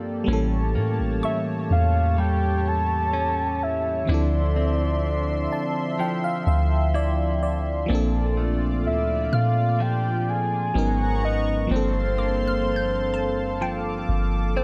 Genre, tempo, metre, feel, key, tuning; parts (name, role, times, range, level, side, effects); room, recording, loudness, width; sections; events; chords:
R&B; 63 BPM; 4/4; straight; A4 = 437 Hz
FM electric piano; accompaniment; 0.0-14.6 s; G2 to A5; -31 LUFS; equal; chorus
chorused pulse-width pad; sustained chords; 0.0-14.6 s; F3 to D6; -34 LUFS; equal
direct-recorded clean electric guitar; arpeggios; 0.0-14.6 s; G2 to E4; -33 LUFS; equal; delay
soft 808-style bass; bass; 0.3-14.6 s; G1 to Bb2; -26 LUFS; equal
soft octave-layered synth lead; melody; 1.2-14.5 s; C5 to A5; -29 LUFS; equal; chorus, delay
glassy wavetable pluck; texture; 1.2-2.4, 9.3-14.6 s; C5 to G6; -37 LUFS; equal; chorus, delay
little or no reverb; dark, warm production; -23 LUFS; mono
0.3-14.6 A section
FM electric piano fill 5.0-7.9
0.3 A7b9; 4.1 Dm9; 7.9 Bbmaj7; 10.8 G#m11; 11.7 Gm11